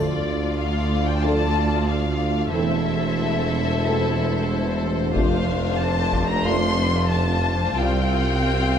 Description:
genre	cinematic, epic orchestral film score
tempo	92 BPM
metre	4/4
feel	straight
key	D minor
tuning	A4 = 440 Hz
part	warm symphonic violin section	melody	0.0-8.8 s	D5 to C6	-27 LUFS	left 5 dB	none
part	warm symphonic violin section	second line	0.0-8.8 s	F4 to F5	-29 LUFS	left 4 dB	none
part	rich symphonic viola section	accompaniment	0.0-8.8 s	A3 to F4	-29 LUFS	left 1 dB	none
part	mellow French horn section	sustained chords	0.0-8.0 s	C4 to A4	-29 LUFS	left 3 dB	none
part	warm trombone section	sustained chords	0.0-8.0 s	C3 to A3	-31 LUFS	right 5 dB	none
part	rich symphonic cello section	bass	0.0-8.8 s	C2 to F2	-27 LUFS	right 2 dB	none
part	rich symphonic double bass section	bass	0.0-8.8 s	E1 to D2	-26 LUFS	right 1 dB	none
part	warm tuba	bass	0.0-8.8 s	E1 to D2	-26 LUFS	right 3 dB	none
part	timpani	percussion	0.0-0.9 s	D3	-33 LUFS	left 4 dB	none
part	taiko ensemble	drums	5.2-6.4 s	none	-28 LUFS	left 1 dB	none
room	moderate scoring stage reverb, RT60 1.5 s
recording	none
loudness	-19 LUFS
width	side -8 dB against mid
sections	0.0-8.8 A section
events	none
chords	0.0 Dm; 2.5 Am/E; 5.2 F6; 7.8 Csus4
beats	0.57 1.23 1.88 | 2.54 3.19 3.85 4.50 | 5.15 5.81 6.46 7.12 | 7.77 8.42

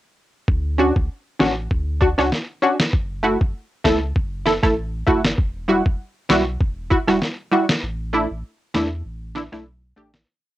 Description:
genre	dancehall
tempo	98 BPM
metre	4/4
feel	swing 56% on 16ths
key	unclear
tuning	A4 = 440 Hz
part	warm sub bass	bass	0.5-10.2 s	E1 to E2	-28 LUFS	equal	none
part	lo-fi sampler-style drum kit	drums	0.5-10.3 s	kick drum, rim click, snare drum	-20 LUFS	equal	cassette tape
part	punchy chord stab	accompaniment	0.8-10.1 s	G3 to A4	-18 LUFS	equal	chorus, cassette tape
room	light reverb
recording	home recording on cassette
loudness	-18 LUFS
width	side -15 dB against mid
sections	0.5-10.3 verse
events	break 7.8-10.3; fade-out 7.8-10.3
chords	0.5 Dmaj7; 2.9 F#m7; 5.4 Emadd9; 7.8 Asus4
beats	| 0.48 1.09 1.71 2.32 | 2.93 3.54 4.16 4.77 | 5.38 5.99 6.60 7.22 | 7.83 8.44 9.05 9.66

